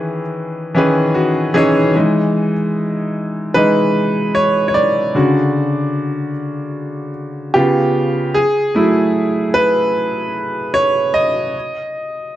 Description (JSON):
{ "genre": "R&B", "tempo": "75 BPM", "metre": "4/4", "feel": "swing 61% on 16ths", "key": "E major", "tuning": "A4 = 440 Hz", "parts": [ { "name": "mellow electric guitar", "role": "melody", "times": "0.0-1.1 s", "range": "E5", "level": "-44 LUFS", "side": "equal", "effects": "none" }, { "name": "bright baby grand piano", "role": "accompaniment", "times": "0.0-12.4 s", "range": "C#3 to D#5", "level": "-14 LUFS", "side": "equal", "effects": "none" } ], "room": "moderate echo chamber reverb, RT60 1.9 s, small room reverb", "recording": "dark, warm production, nothing above 10.8 kHz", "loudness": "-14 LUFS", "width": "side -13 dB against mid", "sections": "0.0-1.9 A section; 1.9-12.4 B section", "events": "grand piano solo 1.9-12.4", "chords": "0.0 C#m9; 1.9 Emaj7; 5.2 Dmaj7; 7.5 C#7#11; 8.3 F#m9; 11.6 N.C." }